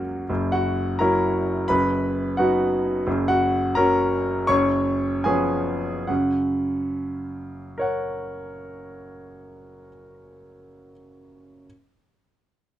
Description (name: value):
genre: classical, virtuoso piano study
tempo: 70-89 BPM (dotted quarters)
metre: 6/8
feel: rubato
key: F# major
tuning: A4 = 440 Hz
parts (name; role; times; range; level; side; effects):
- bright concert grand piano; solo; 0.0-11.7 s; F#1 to C#6; -21 LUFS; equal; none
room: light reverb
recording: dark, warm production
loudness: -20 LUFS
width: side -12 dB against mid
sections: 0.3-6.1 A section; 6.1-9.5 B section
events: slowing down 2.4-6.1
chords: 0.3 F#7; 1.7 B/F#; 3.1 F#; 4.5 C#7/F#; 6.1 F#